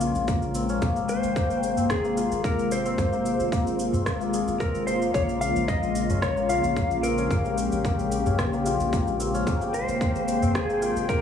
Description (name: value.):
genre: organic downtempo.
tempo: 111 BPM.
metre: 4/4.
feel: straight.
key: unclear.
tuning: A4 = 440 Hz.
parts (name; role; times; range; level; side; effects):
warm analog pad; sustained chords; 0.0-11.2 s; C3 to G5; -28 LUFS; left 2 dB; chorus, sidechain pumping.
santur; arpeggios; 0.0-11.2 s; F3 to Ab4; -30 LUFS; left 3 dB; vintage 12-bit sampler grit, tape echo.
round analog bass; bass; 0.0-11.2 s; Ab1 to Bb1; -32 LUFS; equal; sidechain pumping.
electronic shaker and rim click; drums; 0.0-11.2 s; none; -36 LUFS; right 1 dB; none.
electronic kick drum; drums; 0.3-11.2 s; none; -27 LUFS; equal; none.
udu; percussion; 0.8-10.5 s; none; -29 LUFS; left 1 dB; none.
clean lap steel guitar; melody; 1.1-11.2 s; Ab4 to F5; -29 LUFS; left 1 dB; tape echo.
room: moderate lush hall reverb, RT60 3.0 s.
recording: small room reverb.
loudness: -22 LUFS.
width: side -8 dB against mid.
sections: 0.0-11.2 A section.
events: none.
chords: 0.0 Bbm7; 0.8 Abmaj9; 5.1 Bbm7; 9.5 Abmaj9.